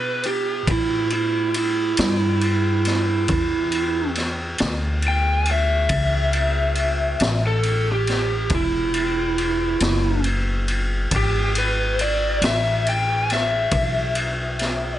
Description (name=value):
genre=slow blues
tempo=46 BPM (dotted quarters)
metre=12/8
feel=straight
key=unclear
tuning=A4 = 444 Hz
part: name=lead guitar through a small cranked amp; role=melody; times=0.0-15.0 s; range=E4 to G5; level=-22 LUFS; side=right 1 dB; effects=overdrive
part: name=upright bass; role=bass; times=0.0-15.0 s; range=E1 to B2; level=-24 LUFS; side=left 1 dB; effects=none
part: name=raw garage drum kit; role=drums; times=0.2-14.8 s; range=kick drum, ride cymbal, snare drum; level=-24 LUFS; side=left 1 dB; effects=none
room=little or no reverb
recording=nothing above 10.9 kHz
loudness=-18 LUFS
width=side -12 dB against mid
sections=0.0-15.0 A section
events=lead electric guitar solo 0.0-15.0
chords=0.0 A7; 8.5 E